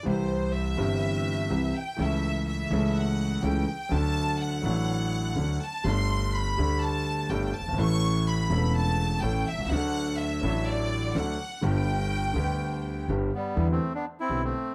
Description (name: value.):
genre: tango.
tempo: 124 BPM.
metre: 4/4.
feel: rubato.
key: G major.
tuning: A4 = 440 Hz.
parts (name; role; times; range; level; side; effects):
bright studio violin section; second line; 0.0-13.1 s; C5 to C#6; -35 LUFS; equal; none.
clear concert grand piano; accompaniment; 0.0-14.5 s; E1 to A4; -31 LUFS; equal; none.
upright bass; bass; 0.1-14.5 s; E1 to E2; -31 LUFS; equal; none.
bandoneon; melody; 13.3-14.7 s; G3 to E4; -32 LUFS; equal; none.
room: light reverb.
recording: none.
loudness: -28 LUFS.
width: mono.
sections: 0.0-13.6 A section; 13.6-14.7 B section.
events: violin section solo 0.0-13.6.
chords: 0.1 C; 2.0 A/C#; 3.9 D; 5.9 Gsus2; 7.8 A; 9.7 D; 11.6 G; 13.6 Em7.